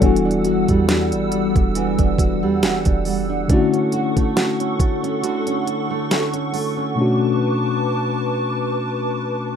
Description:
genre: contemporary R&B.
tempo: 69 BPM.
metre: 4/4.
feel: swing 54% on 16ths.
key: E dorian.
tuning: A4 = 440 Hz.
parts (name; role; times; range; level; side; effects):
mellow tine electric piano; accompaniment; 0.0-9.6 s; B2 to A4; -21 LUFS; left 4 dB; slow stereo tremolo.
hollow soft pad; sustained chords; 0.0-9.6 s; G3 to E6; -25 LUFS; equal; ensemble chorus, sidechain pumping.
nylon-string guitar; arpeggios; 0.0-7.6 s; D3 to F#4; -23 LUFS; right 7 dB; ping-pong delay.
clean 808-style bass; bass; 0.0-3.5 s; E1 to E2; -26 LUFS; right 1 dB; none.
smooth R&B drum kit; drums; 0.0-6.8 s; hi-hat, kick drum, snare drum; -19 LUFS; right 1 dB; none.
room: light reverb.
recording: rough home demo mix.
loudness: -17 LUFS.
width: side -8 dB against mid.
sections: 0.0-9.6 A section.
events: none.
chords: 0.0 Em9; 3.5 Dmaj7; 7.0 Bm9.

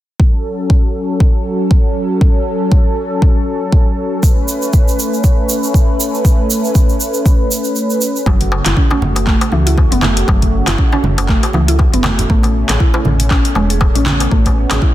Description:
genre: afro house.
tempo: 119 BPM.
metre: 4/4.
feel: swing 57% on 16ths.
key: F# minor.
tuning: A4 = 445 Hz.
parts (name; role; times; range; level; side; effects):
warm analog pad; sustained chords; 0.2-14.9 s; B2 to B4; -18 LUFS; equal; chorus, sidechain pumping.
electronic kick drum; drums; 0.2-14.9 s; none; -12 LUFS; equal; studio ambience.
egg shaker; percussion; 4.2-8.2 s; none; -21 LUFS; right 4 dB; none.
mallet-like synth pluck; arpeggios; 8.3-14.9 s; E3 to G#4; -19 LUFS; equal; chorus, sidechain pumping, ping-pong delay.
woody FM bass; bass; 8.3-14.8 s; E1 to C#2; -16 LUFS; equal; sidechain pumping.
darbuka; percussion; 8.3-14.8 s; none; -24 LUFS; left 2 dB; none.
deep house drum kit; drums; 8.4-14.8 s; handclaps, hi-hat; -20 LUFS; equal; overdrive, studio ambience.
congas; percussion; 8.4-14.8 s; none; -21 LUFS; right 2 dB; none.
room: light reverb.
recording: dense, heavily limited modern master.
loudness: -11 LUFS.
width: side -14 dB against mid.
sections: 0.2-8.3 A section; 8.3-14.9 B section.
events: break 7.8-8.3.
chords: 0.2 F#m; 4.2 Aadd9; 8.3 F#m; 12.3 Aadd9.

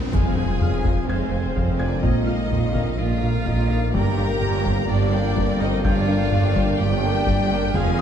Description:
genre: cinematic, hybrid orchestral and electronic film score.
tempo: 126 BPM.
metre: 4/4.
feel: straight.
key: G phrygian.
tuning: A4 = 440 Hz.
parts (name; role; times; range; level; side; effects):
deep dark ambient pad; sustained chords; 0.0-8.0 s; Ab3 to C5; -32 LUFS; left 1 dB; none.
glassy wavetable pluck; arpeggios; 0.0-8.0 s; F3 to F4; -32 LUFS; left 3 dB; none.
round analog bass; riff; 0.0-8.0 s; F2 to Bb3; -27 LUFS; right 1 dB; none.
clear symphonic double bass section; bass; 0.0-8.0 s; F1 to Bb1; -26 LUFS; right 4 dB; none.
dark detuned saw bass; bass; 0.0-8.0 s; F1 to Bb1; -29 LUFS; left 1 dB; none.
rich symphonic cello section; bass; 0.0-8.0 s; F2 to Bb2; -28 LUFS; right 2 dB; none.
riser and impact; sound effects; 0.0-2.0 s; none; -29 LUFS; left 1 dB; none.
felt-muted upright piano; texture; 0.0-8.0 s; F5 to Ab6; -37 LUFS; left 3 dB; tape echo.
rich cello; melody; 0.1-8.0 s; C4 to Bb4; -33 LUFS; right 2 dB; tape echo.
warm symphonic violin section; melody; 0.1-8.0 s; Eb5 to Ab5; -38 LUFS; left 6 dB; none.
warm studio violin section; second line; 0.1-8.0 s; C5 to Bb5; -31 LUFS; left 3 dB; none.
dark symphonic viola section; accompaniment; 0.1-8.0 s; F4 to Ab5; -31 LUFS; right 2 dB; none.
dark trombone section; sustained chords; 0.1-8.0 s; F2 to C4; -32 LUFS; right 1 dB; none.
warm French horn section; sustained chords; 0.1-8.0 s; Ab3 to G4; -30 LUFS; left 5 dB; none.
taiko ensemble; drums; 0.1-8.0 s; none; -27 LUFS; left 1 dB; none.
room: moderate concert hall reverb, RT60 2.2 s.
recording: dark, warm production.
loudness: -18 LUFS.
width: side -8 dB against mid.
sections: 0.1-8.0 A section.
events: impact 0.1-2.0.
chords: 0.1 Fm; 2.0 Bbsus4; 3.9 Gm7.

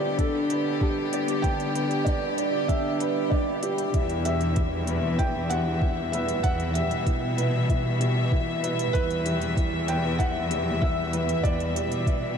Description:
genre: piano and strings electronica.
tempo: 96 BPM.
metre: 4/4.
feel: straight.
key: E minor.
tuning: A4 = 440 Hz.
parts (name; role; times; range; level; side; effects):
felt-muted upright piano; melody; 0.0-12.4 s; G4 to G5; -31 LUFS; right 1 dB; ping-pong delay.
warm chamber string section; sustained chords; 0.0-12.4 s; B2 to E5; -30 LUFS; left 2 dB; sidechain pumping.
dark upright piano; riff; 0.0-12.4 s; D4 to D5; -29 LUFS; right 1 dB; analog chorus, ping-pong delay.
electronic hi-hat; drums; 0.2-12.2 s; none; -40 LUFS; right 2 dB; none.
electronic kick drum; drums; 0.2-12.2 s; none; -25 LUFS; equal; none.
rich studio cello section; bass; 3.9-12.4 s; E2 to B2; -28 LUFS; equal; sidechain pumping.
room: wet huge ambient reverb, RT60 7.7 s.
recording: dreamy mix soaked in reverb.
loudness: -23 LUFS.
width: side -7 dB against mid.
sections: 0.0-3.9 A section; 3.9-12.4 B section.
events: build-up 0.0-3.9; drop 3.9-12.4.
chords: 0.0 G; 3.9 Em.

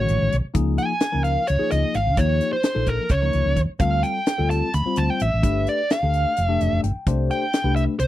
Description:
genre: electric jazz fusion.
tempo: 258 BPM (eighths).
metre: 7/8.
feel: straight.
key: unclear.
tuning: A4 = 439 Hz.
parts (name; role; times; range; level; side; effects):
dark smooth lead guitar; melody; 0.0-8.1 s; Bb4 to B5; -23 LUFS; right 1 dB; overdrive.
tine electric piano; accompaniment; 0.0-7.9 s; D#3 to G5; -26 LUFS; left 6 dB; phaser.
hollow-body short-scale fingered electric bass; bass; 0.0-8.1 s; F1 to Eb2; -22 LUFS; equal; none.
tight funk drum kit; drums; 0.1-8.1 s; hi-hat, kick drum, snare drum; -24 LUFS; equal; none.
room: little or no reverb.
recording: dry, close 1970s-style studio recording.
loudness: -19 LUFS.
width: side -14 dB against mid.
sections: 0.0-8.1 A section.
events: tine electric piano fill 6.4-7.1.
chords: 0.0 B9; 0.6 Dbadd9; 2.2 Eb9; 3.8 Dm7; 5.4 G7; 7.1 C5.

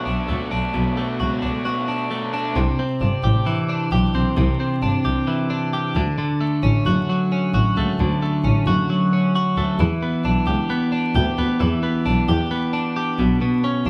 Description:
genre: indie pop.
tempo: 133 BPM.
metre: 4/4.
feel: straight.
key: unclear.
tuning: A4 = 440 Hz.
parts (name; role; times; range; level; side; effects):
raw garage guitar; accompaniment; 0.0-2.6 s; B2 to F#4; -32 LUFS; equal; overdrive.
twelve-string electric guitar; arpeggios; 0.0-13.9 s; B2 to G4; -23 LUFS; equal; none.
dark double bass; bass; 0.1-13.9 s; F#1 to E2; -23 LUFS; equal; none.
room: moderate large studio reverb, RT60 1.1 s.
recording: band playing live in one room, vinyl crackle.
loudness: -21 LUFS.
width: mono.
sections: 0.0-2.6 A section; 2.6-13.9 B section.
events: none.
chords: 0.0 Bm7; 2.6 Cadd9; 6.0 Dmaj7; 9.8 Em7; 13.2 Bmadd9.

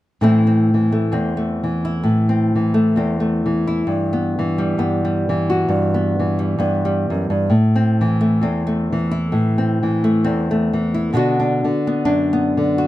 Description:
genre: folk.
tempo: 66 BPM.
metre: 4/4.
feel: swing 56% on 8ths.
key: A dorian.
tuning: A4 = 440 Hz.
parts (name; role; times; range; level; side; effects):
nylon-string guitar; accompaniment; 0.2-12.9 s; E2 to F#4; -16 LUFS; equal; none.
room: light reverb.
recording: close, detailed microphones.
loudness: -16 LUFS.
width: side -15 dB against mid.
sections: 0.2-12.9 A section.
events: none.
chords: 0.2 Am; 3.9 Em/G; 7.5 Am; 11.2 Bm.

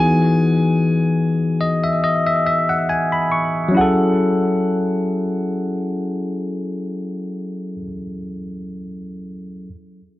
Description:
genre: contemporary R&B.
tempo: 70 BPM.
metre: 4/4.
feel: swing 54% on 16ths.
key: F# dorian.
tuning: A4 = 441 Hz.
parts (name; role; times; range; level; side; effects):
warm grand piano; melody; 0.0-7.8 s; F#5 to G#5; -25 LUFS; right 2 dB; analog delay.
bell-like tine electric piano; accompaniment; 0.0-9.7 s; E3 to C#6; -18 LUFS; left 1 dB; analog delay.
room: moderate spring reverb, RT60 1.1 s, small room ambience.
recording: echo-heavy mix, low-pass filter.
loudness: -17 LUFS.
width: side -16 dB against mid.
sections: 0.0-3.7 A section; 3.7-7.2 B section.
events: filter sweep 0.0-3.7; tine electric piano fill 1.2-3.7.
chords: 0.0 Emaj7; 3.7 F#m9.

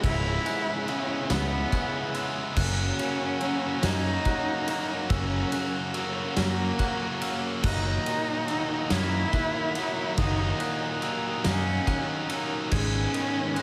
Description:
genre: post-rock.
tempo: 47 BPM (dotted quarters).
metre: 6/8.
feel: straight.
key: unclear.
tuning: A4 = 440 Hz.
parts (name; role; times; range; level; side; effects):
dark cello; melody; 0.0-13.6 s; A#3 to E4; -34 LUFS; equal; digital delay.
clear studio string section; sustained chords; 0.0-13.6 s; D#4 to B5; -44 LUFS; equal; none.
glockenspiel with brass mallets; arpeggios; 0.0-13.6 s; D#6 to G#6; -41 LUFS; equal; digital delay.
twangy electric guitar; arpeggios; 0.0-13.6 s; C#2 to C#4; -39 LUFS; equal; none.
biting overdriven guitar; riff; 0.0-13.6 s; C#2 to G#4; -37 LUFS; equal; spring reverb.
sludgy distorted guitar; riff; 0.0-13.6 s; C#2 to G#4; -35 LUFS; equal; overdrive.
growling fingered electric bass; bass; 0.0-13.1 s; C#1 to F#2; -30 LUFS; equal; overdrive.
loose indie drum kit; drums; 0.0-13.6 s; crash cymbal, kick drum, ride cymbal, snare drum; -34 LUFS; equal; none.
room: light reverb, small room ambience.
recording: none.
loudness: -27 LUFS.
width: mono.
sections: 0.0-13.6 A section.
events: none.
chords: 0.0 C#m7; 2.6 F#; 7.6 D#m/F#; 12.7 G#m.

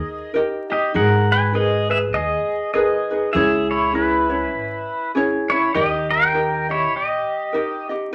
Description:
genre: Hawaiian.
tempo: 100 BPM.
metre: 4/4.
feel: swing 59% on 8ths.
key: unclear.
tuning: A4 = 440 Hz.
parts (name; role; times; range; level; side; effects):
pedal steel guitar; melody; 0.0-7.9 s; E4 to G#5; -22 LUFS; equal; none.
ukulele; accompaniment; 0.0-8.1 s; C#4 to D#5; -24 LUFS; equal; none.
upright bass; bass; 0.9-7.2 s; G#1 to D#2; -27 LUFS; equal; none.
room: wet studio reverb, RT60 0.6 s.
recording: vinyl crackle.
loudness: -20 LUFS.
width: mono.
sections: 0.0-8.1 A section.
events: none.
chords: 0.0 D#; 0.9 G#madd9; 3.3 C#m; 5.7 D#.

